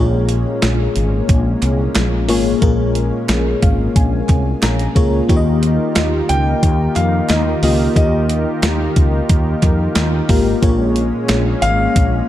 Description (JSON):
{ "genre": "1980s-style pop", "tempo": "90 BPM", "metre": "4/4", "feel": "straight", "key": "unclear", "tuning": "A4 = 440 Hz", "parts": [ { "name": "FM electric piano with soft pad layer", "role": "accompaniment", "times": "0.0-12.3 s", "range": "Bb2 to Bb5", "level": "-19 LUFS", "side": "left 2 dB", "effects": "chorus, tremolo" }, { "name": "warm analog pad", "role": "sustained chords", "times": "0.0-12.3 s", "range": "Eb3 to Bb4", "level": "-23 LUFS", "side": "equal", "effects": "chorus" }, { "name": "woody fretless electric bass", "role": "bass", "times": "0.0-12.2 s", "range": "Ab1 to F2", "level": "-18 LUFS", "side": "equal", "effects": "analog chorus" }, { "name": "clean 12-bit digital drum machine", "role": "drums", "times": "0.3-12.1 s", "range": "hi-hat, kick drum, snare drum", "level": "-17 LUFS", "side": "equal", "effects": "none" }, { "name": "group handclap", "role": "percussion", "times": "0.6-11.4 s", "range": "none", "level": "-32 LUFS", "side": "right 5 dB", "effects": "none" }, { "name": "warm concert grand piano", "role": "melody", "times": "6.3-12.3 s", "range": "Eb5 to G5", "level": "-20 LUFS", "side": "left 1 dB", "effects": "none" } ], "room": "light reverb", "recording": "dark, warm production", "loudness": "-13 LUFS", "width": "side -13 dB against mid", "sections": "0.0-12.3 A section", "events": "FM electric piano fill 3.3-5.3", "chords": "0.0 Bbm7; 5.3 Ebadd9; 10.6 Bbm7" }